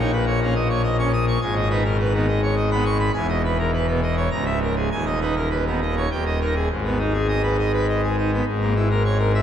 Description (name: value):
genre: classical, organ toccata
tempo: 103 BPM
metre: 3/4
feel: straight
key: G# minor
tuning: A4 = 440 Hz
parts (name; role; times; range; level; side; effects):
- pipe organ, full organ; solo; 0.0-9.4 s; C#1 to D#6; -19 LUFS; equal; none
room: wet cathedral reverb, RT60 5.0 s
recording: vinyl crackle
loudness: -19 LUFS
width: side -9 dB against mid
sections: 0.0-6.7 A section; 6.7-9.4 B section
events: none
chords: 0.0 D#7(no3)/A#; 1.4 G#m; 3.1 Emaj7; 4.3 A#dim/C#; 4.9 G#m/D#; 6.1 D#; 6.7 G#m; 8.5 A#m7b5/G#